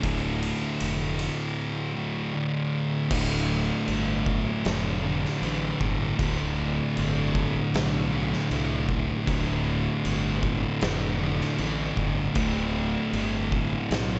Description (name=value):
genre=stoner and doom metal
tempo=78 BPM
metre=4/4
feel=straight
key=unclear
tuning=A4 = 440 Hz
part: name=thick fuzz guitar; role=riff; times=0.0-14.2 s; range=D2 to D3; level=-32 LUFS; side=equal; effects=distortion
part: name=thick fuzz guitar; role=riff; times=0.0-14.2 s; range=D2 to D3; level=-32 LUFS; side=equal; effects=distortion
part: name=fuzz fingered electric bass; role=bass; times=0.0-14.2 s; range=D1 to C2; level=-33 LUFS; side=equal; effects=overdrive
part: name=oversized low-tuned drum kit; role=drums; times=0.0-14.1 s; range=crash cymbal, kick drum, ride cymbal, snare drum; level=-34 LUFS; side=equal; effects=none
room=small room ambience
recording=nothing above 8.0 kHz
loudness=-27 LUFS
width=mono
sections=0.0-3.1 A section; 3.1-14.2 B section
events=none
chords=0.0 Dm; 3.1 D5